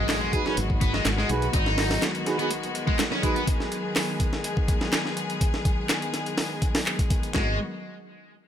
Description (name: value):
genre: breakbeat, breaks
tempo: 124 BPM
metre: 4/4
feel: straight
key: G# minor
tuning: A4 = 440 Hz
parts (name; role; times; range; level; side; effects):
- clear studio string section; sustained chords; 0.0-7.6 s; D#3 to G#4; -31 LUFS; left 2 dB; sidechain pumping
- sludgy distorted guitar; riff; 0.0-3.5, 7.3-7.6 s; G#3 to G#4; -29 LUFS; equal; overdrive, vintage 12-bit sampler grit, dub echo
- fingered electric bass; bass; 0.0-2.0, 7.3-7.6 s; G#1 to B1; -28 LUFS; equal; none
- impact; sound effects; 0.0-1.5 s; none; -38 LUFS; equal; none
- breakbeat sampler-style drum kit; drums; 0.1-7.5 s; handclaps, hi-hat, kick drum, snare drum; -26 LUFS; equal; none
- electronic handclaps; drums; 0.1-7.0 s; none; -30 LUFS; equal; none
- mellow brass ensemble; stabs; 0.3-3.4 s; D#4 to B4; -32 LUFS; right 4 dB; dub echo
room: light reverb, digital ambience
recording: none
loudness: -23 LUFS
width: side -10 dB against mid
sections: 0.0-7.3 A section; 7.3-8.5 B section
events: impact 0.0-1.5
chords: 0.0 G#m7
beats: 0.09 0.57 1.06 | 1.54 2.02 2.51 2.99 | 3.48 3.96 4.44 4.93 | 5.41 5.89 6.38 6.86 | 7.35